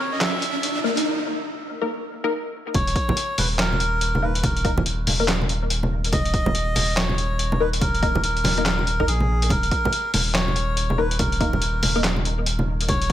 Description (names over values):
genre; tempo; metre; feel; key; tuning
deep dubstep; 142 BPM; 4/4; swing 61% on 16ths, half-time; unclear; A4 = 440 Hz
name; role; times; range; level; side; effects
melodica; melody; 0.0-13.1 s; Ab4 to Fb5; -27 LUFS; equal; dub echo
riser; sound effects; 0.0-1.1 s; none; -26 LUFS; right 1 dB; none
trip hop sampler-style drum kit; drums; 0.2-13.1 s; handclaps, hi-hat, snare drum; -24 LUFS; equal; none
filtered dub chord stab; stabs; 0.8-12.0 s; Bb3 to Bb4; -27 LUFS; left 3 dB; phaser, analog chorus, dub echo
soft dub sub bass; bass; 2.7-13.1 s; Eb1 to Bb1; -24 LUFS; equal; tube saturation
electronic kick drum; drums; 2.7-13.1 s; none; -25 LUFS; equal; overdrive, high-pass filter on kick
congas; percussion; 2.7-13.0 s; none; -27 LUFS; right 1 dB; none
room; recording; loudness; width
light reverb; none; -20 LUFS; side -12 dB against mid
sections
0.0-2.7 A section; 2.7-13.1 B section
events
build-up 0.0-2.7; riser 0.0-1.1; filter sweep on synth stab 0.0-2.7; break 1.1-2.7; drop 2.7-13.1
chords
0.0 Eb5